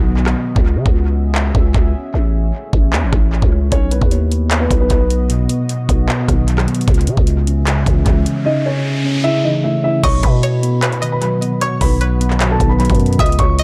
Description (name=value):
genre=hip hop, trap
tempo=152 BPM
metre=4/4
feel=half-time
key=unclear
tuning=A4 = 439 Hz
part: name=mellow tine electric piano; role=accompaniment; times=0.0-0.6, 5.3-13.6 s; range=B2 to C#4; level=-21 LUFS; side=equal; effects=low-pass filter
part: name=deep dark ambient pad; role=sustained chords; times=0.0-13.6 s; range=C#3 to E5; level=-30 LUFS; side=equal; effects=chorus, built-in reverb
part: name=growling 808-style bass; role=bass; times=0.0-13.6 s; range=A1 to C#3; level=-18 LUFS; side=equal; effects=none
part: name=downlifter and riser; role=sound effects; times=0.0-0.6, 8.0-9.2 s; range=none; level=-32 LUFS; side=equal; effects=none
part: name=trap drum kit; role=drums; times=0.3-13.6 s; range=crash cymbal, handclaps, hi-hat, kick drum, rim click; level=-19 LUFS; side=equal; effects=tape echo
part: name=dark concert grand piano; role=melody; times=3.7-5.3, 8.5-13.6 s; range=B3 to D#6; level=-22 LUFS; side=equal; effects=low-pass filter, tape echo
part: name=string-like resonator pluck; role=second line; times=10.0-13.6 s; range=B4 to E5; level=-28 LUFS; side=equal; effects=chorus, phaser, tape echo
room=little or no reverb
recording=echo-heavy mix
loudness=-15 LUFS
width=mono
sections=0.0-10.0 A section; 10.0-13.6 B section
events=break 0.0-5.3; riser 8.0-10.0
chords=0.0 B; 0.6 C#m; 2.1 A; 3.7 B; 6.9 C#m; 8.5 A; 10.0 B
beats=0.17 | 0.56 0.96 1.35 1.75 | 2.14 2.54 2.93 3.32 | 3.72 4.11 4.51 4.90 | 5.30 5.69 6.09 6.48 | 6.88 7.27 7.67 8.06 | 8.46 8.85 9.24 9.64 | 10.04 10.43 10.82 11.22 | 11.61 12.01 12.40 12.80 | 13.19 13.59